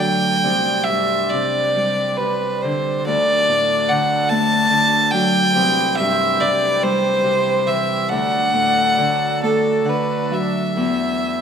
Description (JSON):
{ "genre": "celtic folk, Celtic slow air", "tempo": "46 BPM (dotted quarters)", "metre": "6/8", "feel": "uneven beats, rubato", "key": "unclear", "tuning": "A4 = 441 Hz", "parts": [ { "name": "rich fiddle", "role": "melody", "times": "0.0-11.4 s", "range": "A4 to A5", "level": "-17 LUFS", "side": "equal", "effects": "none" }, { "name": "Celtic harp", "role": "accompaniment", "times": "0.0-11.4 s", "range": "C2 to F#5", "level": "-21 LUFS", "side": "left 1 dB", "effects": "none" }, { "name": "accordion", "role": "sustained chords", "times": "0.0-11.4 s", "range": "E3 to A4", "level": "-28 LUFS", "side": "right 1 dB", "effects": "none" } ], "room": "moderate scoring stage reverb, RT60 1.5 s", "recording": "minimal, uncompressed stereo recording", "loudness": "-16 LUFS", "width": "side -7 dB against mid", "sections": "0.0-10.8 A section", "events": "harp fill 9.4-10.8", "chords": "0.4 Csus2; 3.1 D; 5.6 C; 8.1 D; 10.8 Em", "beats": "| 0.43 1.76 | 3.06 4.30 | 5.56 6.84 | 8.11 9.41 | 10.76" }